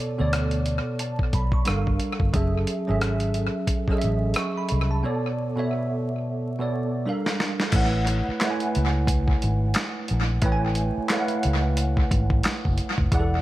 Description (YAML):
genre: R&B, neo-soul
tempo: 89 BPM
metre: 4/4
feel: swing 58% on 16ths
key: unclear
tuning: A4 = 439 Hz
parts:
  - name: bell-like tine electric piano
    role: accompaniment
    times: 0.0-13.4 s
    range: B2 to C#6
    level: -26 LUFS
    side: right 1 dB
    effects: ensemble chorus
  - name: vintage muted fingered electric bass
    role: bass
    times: 0.2-13.4 s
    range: E1 to D2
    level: -24 LUFS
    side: equal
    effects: none
  - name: dusty soul sampler-style drum kit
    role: drums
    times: 0.3-13.3 s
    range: crash cymbal, handclaps, hi-hat, kick drum, rim click, snare drum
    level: -25 LUFS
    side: equal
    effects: tape echo
room: digital ambience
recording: echo-heavy mix, vinyl crackle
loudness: -22 LUFS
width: side -16 dB against mid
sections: 0.0-7.7 A section; 7.7-13.4 B section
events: break 5.0-7.7; drum fill 6.4-7.7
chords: 0.0 Bm9; 1.7 Gm9; 2.3 F#m9; 5.0 Bm9; 7.1 Gm9; 7.7 A6